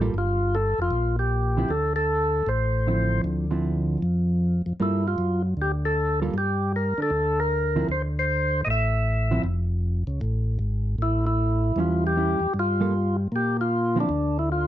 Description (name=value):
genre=soul jazz organ trio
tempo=155 BPM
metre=4/4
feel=swing 64% on 8ths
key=D minor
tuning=A4 = 440 Hz
part: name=hollow-body jazz guitar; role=accompaniment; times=0.0-9.4, 11.8-14.1 s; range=D3 to A4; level=-27 LUFS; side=right 3 dB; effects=none
part: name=tonewheel organ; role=bass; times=0.0-14.7 s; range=F1 to D3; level=-24 LUFS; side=equal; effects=slow rotary speaker
part: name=percussive tonewheel organ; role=melody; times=0.2-14.7 s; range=D4 to E5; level=-25 LUFS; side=equal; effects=slow rotary speaker
room=light reverb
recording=dark, warm production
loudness=-22 LUFS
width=side -12 dB against mid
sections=0.0-14.7 A section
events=none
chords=0.1 Gm7; 1.7 Dm9; 4.8 Gm9; 7.9 Dm9; 11.0 A7; 12.5 Gm7; 14.1 Dmadd9